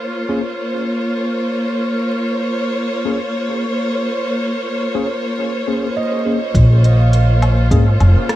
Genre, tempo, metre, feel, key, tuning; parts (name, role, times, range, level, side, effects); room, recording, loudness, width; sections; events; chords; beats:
ambient dub; 103 BPM; 4/4; straight; Bb minor; A4 = 441 Hz
rich chamber string section; sustained chords; 0.0-8.4 s; Bb3 to Db5; -19 LUFS; equal
tine electric piano; stabs; 0.3-7.8 s; Bb3 to Ab4; -24 LUFS; left 2 dB; medium stereo tremolo, low-pass filter, dub echo
handpan; arpeggios; 6.0-7.4 s; Eb5; -26 LUFS; right 7 dB; analog delay
upright bass; bass; 6.5-8.1 s; F1 to Bb1; -10 LUFS; equal
electronic kick drum; drums; 6.5-7.8 s; -16 LUFS; equal; studio reverb
organic electronic drum kit; drums; 6.5-8.4 s; hi-hat, rim click, woodblock; -24 LUFS; left 1 dB; low-pass filter on perc, studio reverb, low-pass filter on hats, low-pass filter on snare, dub echo
bubbling stepped-filter texture; texture; 6.9-8.4 s; F5; -28 LUFS; right 4 dB; chorus, built-in reverb
light reverb, small room reverb; echo-heavy mix, vinyl crackle; -15 LUFS; side -14 dB against mid
0.0-6.5 A section; 6.5-8.4 B section
0.0 Bbm; 6.5 Bbm7
0.14 0.72 1.31 | 1.89 2.47 3.05 3.64 | 4.22 4.80 5.38 5.97 | 6.55 7.13 7.71 8.30